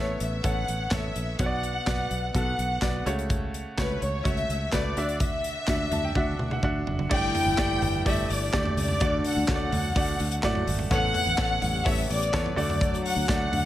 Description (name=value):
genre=piano-driven pop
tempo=126 BPM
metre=4/4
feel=straight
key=unclear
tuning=A4 = 440 Hz
part: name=warm studio violin section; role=melody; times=0.0-13.7 s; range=B4 to G5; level=-30 LUFS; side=left 1 dB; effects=none
part: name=bright grand piano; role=accompaniment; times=0.0-13.7 s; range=G2 to A5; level=-31 LUFS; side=right 1 dB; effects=none
part: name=fingered electric bass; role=bass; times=0.0-13.7 s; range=F#1 to A2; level=-30 LUFS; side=equal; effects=none
part: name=modern studio drum kit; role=drums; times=0.2-13.6 s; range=crash cymbal, handclaps, hi-hat, kick drum, snare drum, toms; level=-29 LUFS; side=equal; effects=none
part: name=mellow French horn section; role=second line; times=7.1-13.7 s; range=D3 to A4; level=-33 LUFS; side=left 4 dB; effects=none
room=little or no reverb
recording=none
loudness=-24 LUFS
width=side -13 dB against mid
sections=0.0-7.1 A section; 7.1-13.7 B section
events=grand piano fill 5.7-7.1; drum fill 6.2-7.1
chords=0.0 Aadd9; 1.4 Bm; 3.1 F#m/C#; 5.0 Dadd9; 7.1 Gsus2; 9.0 D; 10.9 Aadd9; 12.6 D